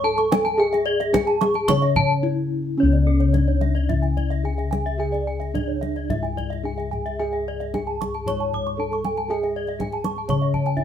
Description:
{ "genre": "Balinese gamelan", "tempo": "110 BPM", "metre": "4/4", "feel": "uneven beats", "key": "C# pelog", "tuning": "A4 = 442 Hz", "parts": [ { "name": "gamelan-type bronze metallophone", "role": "melody", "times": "0.0-10.8 s", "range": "C#4 to C#5", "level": "-26 LUFS", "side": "left 1 dB", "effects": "none" }, { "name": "gamelan-type bronze metallophone", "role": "arpeggios", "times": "0.0-10.8 s", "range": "A4-20c to D6+20c", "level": "-28 LUFS", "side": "left 2 dB", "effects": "none" }, { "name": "gamelan-type bronze metallophone", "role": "arpeggios", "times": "0.0-10.8 s", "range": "C#5 to C#6", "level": "-30 LUFS", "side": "right 5 dB", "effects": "none" }, { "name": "gamelan-type bossed gongs", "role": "bass", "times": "0.0-10.8 s", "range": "C#2 to G#4-30c", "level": "-23 LUFS", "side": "left 2 dB", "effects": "none" }, { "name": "kendang", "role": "percussion", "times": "0.2-10.8 s", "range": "none", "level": "-27 LUFS", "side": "equal", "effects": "none" } ], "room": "moderate studio reverb, RT60 0.6 s", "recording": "band playing live in one room", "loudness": "-20 LUFS", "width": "side -9 dB against mid", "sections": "0.0-10.8 A section", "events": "break 2.0-2.8", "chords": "none" }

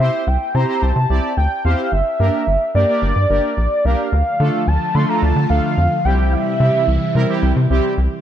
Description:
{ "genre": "synth-pop", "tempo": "109 BPM", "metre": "4/4", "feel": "straight", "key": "unclear", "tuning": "A4 = 440 Hz", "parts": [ { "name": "warm velvety synth lead", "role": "melody", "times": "0.0-8.0 s", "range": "D5 to C6", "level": "-20 LUFS", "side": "equal", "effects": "chorus, ping-pong delay" }, { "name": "analog synth brass", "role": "accompaniment", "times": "0.0-7.9 s", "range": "G3 to D5", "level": "-22 LUFS", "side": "right 1 dB", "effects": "chorus" }, { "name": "rubbery square bass", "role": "bass", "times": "0.0-8.1 s", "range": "G1 to D3", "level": "-16 LUFS", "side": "equal", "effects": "none" }, { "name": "string machine, violas", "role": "sustained chords", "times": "4.3-8.2 s", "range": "C3 to F4", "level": "-23 LUFS", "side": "equal", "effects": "phaser, ensemble chorus" } ], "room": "moderate concert hall reverb, RT60 2.5 s", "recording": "none", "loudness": "-14 LUFS", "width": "side -10 dB against mid", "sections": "0.0-8.2 A section", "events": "none", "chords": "0.0 C; 1.9 Gm; 4.1 Dm; 6.1 C" }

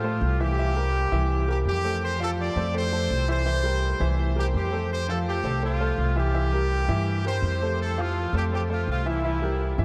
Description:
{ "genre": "latin, salsa", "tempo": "166 BPM", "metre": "4/4", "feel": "straight", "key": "F major", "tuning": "A4 = 440 Hz", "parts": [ { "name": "brilliant horn section", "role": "melody", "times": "0.0-9.8 s", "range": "E4 to D5", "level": "-31 LUFS", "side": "equal", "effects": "tape echo" }, { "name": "bright baby grand piano", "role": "accompaniment", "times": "0.0-9.8 s", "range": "E3 to F5", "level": "-32 LUFS", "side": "equal", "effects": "none" }, { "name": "upright bass", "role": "bass", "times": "0.0-9.8 s", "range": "C2 to A2", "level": "-28 LUFS", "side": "equal", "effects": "none" } ], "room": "moderate huge ambient reverb, RT60 8.7 s", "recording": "dreamy mix soaked in reverb", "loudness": "-25 LUFS", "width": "mono", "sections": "0.0-9.8 A section", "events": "none", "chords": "0.0 Fmaj7; 0.6 C7; 2.0 Fmaj7; 3.5 C7; 4.9 Fmaj7; 6.4 C7; 7.8 Fmaj7; 9.2 C7" }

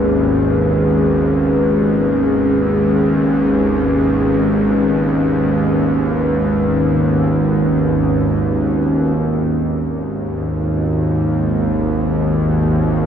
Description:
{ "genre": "dark ambient drone", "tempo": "free time", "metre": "none", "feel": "none", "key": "G# minor", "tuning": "A4 = 439 Hz", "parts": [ { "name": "dark analog pad", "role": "sustained chords", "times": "0.0-13.1 s", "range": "G#3 to B4", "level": "-17 LUFS", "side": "equal", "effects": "chorus" }, { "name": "bowed-like drone", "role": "drone", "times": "0.0-13.1 s", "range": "G#1 to D#2", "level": "-16 LUFS", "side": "right 1 dB", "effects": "built-in reverb" } ], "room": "wet huge ambient reverb, RT60 8.9 s", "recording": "dark, warm production", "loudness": "-14 LUFS", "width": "side -8 dB against mid", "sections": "0.0-9.2 A section; 9.2-13.1 B section", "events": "none", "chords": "0.0 G#m" }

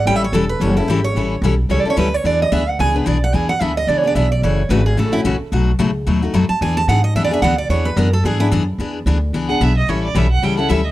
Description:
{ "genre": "acoustic string swing (jazz manouche)", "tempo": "220 BPM", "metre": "4/4", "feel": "swing 57% on 8ths", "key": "E mixolydian", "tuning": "A4 = 440 Hz", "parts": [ { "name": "picked steel-string acoustic guitar", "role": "melody", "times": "0.0-8.5 s", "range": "E4 to A5", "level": "-19 LUFS", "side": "right 4 dB", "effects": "none" }, { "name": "upright bass", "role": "bass", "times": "0.0-10.9 s", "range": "E1 to G#2", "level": "-18 LUFS", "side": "equal", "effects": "none" }, { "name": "picked steel-string acoustic guitar", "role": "accompaniment", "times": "0.1-10.8 s", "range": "B2 to A4", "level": "-19 LUFS", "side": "left 3 dB", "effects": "none" }, { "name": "clear violin", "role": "second line", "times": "9.5-10.9 s", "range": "C#5 to G5", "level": "-21 LUFS", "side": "right 6 dB", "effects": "none" } ], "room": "studio reverb", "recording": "dry, close 1970s-style studio recording", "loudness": "-14 LUFS", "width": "side -15 dB against mid", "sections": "0.0-8.8 A section; 8.8-10.9 A section", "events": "steel-string acoustic guitar solo 0.0-8.8; violin solo 8.8-10.9", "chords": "0.1 A7; 2.2 E7; 4.4 F#m7; 5.5 B7; 6.6 E7; 9.9 A7" }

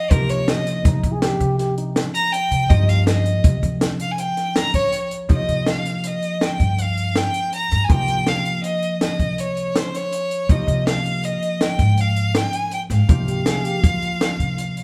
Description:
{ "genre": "progressive instrumental, band music in an uneven meter", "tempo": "162 BPM", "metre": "7/4", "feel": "straight", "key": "C phrygian", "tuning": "A4 = 440 Hz", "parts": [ { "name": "rich violin", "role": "melody", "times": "0.0-14.8 s", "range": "Bb4 to Bb5", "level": "-26 LUFS", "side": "equal", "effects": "none" }, { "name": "vintage hollow-body jazz guitar", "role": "accompaniment", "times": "0.0-14.8 s", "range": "F3 to Bb4", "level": "-30 LUFS", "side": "equal", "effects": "none" }, { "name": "upright bass", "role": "bass", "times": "0.1-14.8 s", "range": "G2 to C3", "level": "-23 LUFS", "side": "equal", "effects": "none" }, { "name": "compact cocktail drum kit", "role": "drums", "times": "0.1-14.8 s", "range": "hi-hat, kick drum, snare drum", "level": "-23 LUFS", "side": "equal", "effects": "none" }, { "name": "dark trombone", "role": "second line", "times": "0.8-2.0, 13.3-14.6 s", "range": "Eb4 to Ab4", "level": "-30 LUFS", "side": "equal", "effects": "none" } ], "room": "wet large studio reverb, RT60 1.3 s", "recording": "band playing live in one room", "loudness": "-20 LUFS", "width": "mono", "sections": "0.0-5.3 A section; 5.3-14.8 B section", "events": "violin solo 0.0-5.3", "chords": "0.0 Cm7; 10.5 Abmaj13" }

